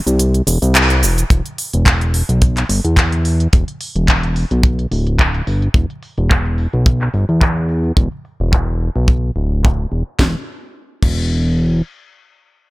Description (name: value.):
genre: nu-disco, nu disco.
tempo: 108 BPM.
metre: 4/4.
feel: swing 54% on 16ths.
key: E minor.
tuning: A4 = 438 Hz.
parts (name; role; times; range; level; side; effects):
fat analog bass; bass; 0.1-11.8 s; D1 to E2; -15 LUFS; equal; tube saturation, sidechain pumping.
house drum kit; drums; 0.1-11.2 s; crash cymbal, handclaps, hi-hat, shaker, snare drum; -20 LUFS; equal; low-pass filter on hats, low-pass filter on perc, low-pass filter on snare, low-pass filter on cymbals.
kick drum; drums; 1.3-11.2 s; none; -14 LUFS; equal; none.
room: small room ambience.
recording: none.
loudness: -13 LUFS.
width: side -20 dB against mid.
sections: 0.0-1.3 A section; 1.3-10.2 B section; 10.2-12.4 C section.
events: kick drops out 0.2-1.3; band accent 0.7; filter sweep on drum 1.3-10.2.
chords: none.